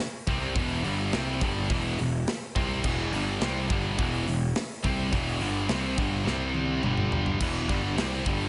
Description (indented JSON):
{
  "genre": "heavy metal",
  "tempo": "105 BPM",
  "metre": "4/4",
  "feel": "straight",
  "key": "E minor",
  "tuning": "A4 = 440 Hz",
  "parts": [
    { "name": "high-gain distorted guitar", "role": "riff", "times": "0.3-8.5 s", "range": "E2 to C4", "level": "-34 LUFS", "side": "equal", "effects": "distortion" },
    { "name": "scooped high-gain guitar", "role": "riff", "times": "0.3-8.5 s", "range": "E2 to C4", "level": "-34 LUFS", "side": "equal", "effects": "distortion" },
    { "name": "fuzz picked electric bass", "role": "bass", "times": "0.3-8.5 s", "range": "E1 to C2", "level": "-33 LUFS", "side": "equal", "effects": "overdrive" },
    { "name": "tight metal drum kit", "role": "drums", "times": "0.3-8.4 s", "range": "crash cymbal, hi-hat, kick drum, snare drum, toms", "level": "-33 LUFS", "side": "equal", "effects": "none" }
  ],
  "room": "small room ambience",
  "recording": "nothing above 10.9 kHz",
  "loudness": "-28 LUFS",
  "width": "mono",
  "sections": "0.0-7.4 A section; 7.4-8.5 A section",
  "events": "drum fill 6.3-7.4",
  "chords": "0.0 Em; 6.3 C5; 6.8 G5; 7.4 Em"
}